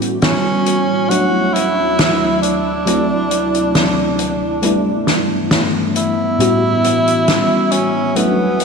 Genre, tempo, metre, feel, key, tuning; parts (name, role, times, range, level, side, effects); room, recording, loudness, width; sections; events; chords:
vaporwave; 68 BPM; 4/4; straight; D major; A4 = 439 Hz
mellow FM electric piano; accompaniment; 0.0-8.6 s; A2 to C#5; -19 LUFS; left 1 dB; phaser, ensemble chorus, analog delay
warbly tape-like pad; sustained chords; 0.0-8.6 s; D2 to F#4; -20 LUFS; equal; chorus, built-in reverb
loose indie drum kit; drums; 0.0-8.6 s; hi-hat, snare drum; -19 LUFS; left 1 dB
breathy tenor saxophone; melody; 0.2-8.6 s; B3 to F#4; -18 LUFS; right 2 dB; tape echo
wet lush hall reverb, RT60 3.1 s; dreamy mix soaked in reverb; -13 LUFS; side -5 dB against mid
0.0-8.6 A section
0.0 A13; 1.1 Dmaj9; 2.9 D9; 4.6 G69; 6.4 A13